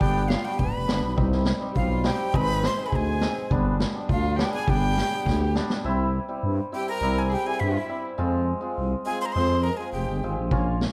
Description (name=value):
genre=klezmer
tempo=103 BPM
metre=2/4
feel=straight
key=G phrygian dominant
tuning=A4 = 440 Hz
part: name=breathy bright jazz flute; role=melody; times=0.0-10.3 s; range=E5 to C6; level=-32 LUFS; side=equal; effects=none
part: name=dark violin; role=second line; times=0.0-10.4 s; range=E4 to C5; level=-35 LUFS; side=equal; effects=none
part: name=hammered dulcimer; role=accompaniment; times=0.0-10.7 s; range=G3 to F4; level=-33 LUFS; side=equal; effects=none
part: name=growling FM bass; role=bass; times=0.0-10.9 s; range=D1 to G2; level=-28 LUFS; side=equal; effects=none
part: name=street-band drum kit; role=drums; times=0.0-5.8, 10.5-10.9 s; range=kick drum, snare drum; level=-29 LUFS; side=equal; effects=none
room=light reverb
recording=dark, warm production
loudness=-25 LUFS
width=mono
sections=0.0-5.8 A section; 5.8-10.9 B section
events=drum fill 5.3-5.8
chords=0.0 G; 1.2 Cm; 2.3 Ab; 3.5 G; 5.8 C; 8.2 Fm